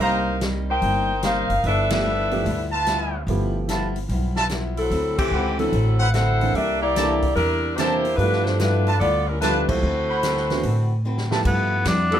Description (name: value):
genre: jazz, big band swing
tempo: 147 BPM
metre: 4/4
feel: swing 66% on 8ths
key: G mixolydian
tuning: A4 = 440 Hz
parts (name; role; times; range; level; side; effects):
- dark saxophone section; melody; 0.0-11.0 s; E3 to G5; -22 LUFS; left 1 dB; none
- picked steel-string acoustic guitar; accompaniment; 0.0-12.2 s; G2 to B4; -31 LUFS; left 3 dB; none
- warm concert grand piano; accompaniment; 0.0-12.2 s; E3 to Bb4; -28 LUFS; right 5 dB; none
- clear trumpet section; stabs; 0.0-0.2, 2.7-11.4 s; G3 to B5; -26 LUFS; right 1 dB; none
- upright bass; bass; 0.0-12.2 s; F#1 to A2; -24 LUFS; equal; none
- swinging big-band drum kit; drums; 0.0-12.2 s; crash cymbal, hi-hat, kick drum, ride cymbal, snare drum; -30 LUFS; equal; none
- bright tenor saxophone; melody; 11.5-12.2 s; B3 to D4; -22 LUFS; left 1 dB; none
- warm saxophone section; sustained chords; 12.1-12.2 s; F3 to A4; -22 LUFS; left 3 dB; none
room: light reverb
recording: dark, warm production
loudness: -19 LUFS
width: side -10 dB against mid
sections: 0.0-11.5 A section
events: band accent 1.8, 5.1, 9.6; drum fill 11.0-11.5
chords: 0.0 Cm7; 1.6 G13; 4.9 D13; 6.5 C13; 8.2 G13; 9.8 D13; 11.5 G13